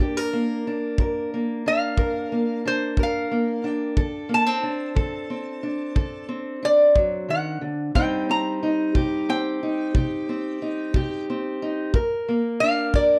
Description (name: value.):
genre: acoustic country blues, solo or duo.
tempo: 60 BPM (dotted quarters).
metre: 12/8.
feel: straight.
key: G minor.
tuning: A4 = 440 Hz.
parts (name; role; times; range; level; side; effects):
fingerpicked steel-string acoustic guitar; accompaniment; 0.0-13.2 s; G2 to Bb4; -27 LUFS; equal; none.
kick drum; drums; 1.0-13.1 s; none; -24 LUFS; equal; none.
lap resonator guitar; melody; 1.7-13.2 s; C5 to Bb5; -24 LUFS; equal; none.
room: light reverb.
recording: dark, warm production.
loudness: -24 LUFS.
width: mono.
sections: 0.0-13.2 A section.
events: none.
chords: 0.0 Gm; 4.0 D7(no3); 8.0 Cm; 11.9 Gm.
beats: 0.98 1.98 2.98 | 3.97 4.97 5.96 6.96 | 7.96 8.95 9.95 10.95 | 11.95 12.94.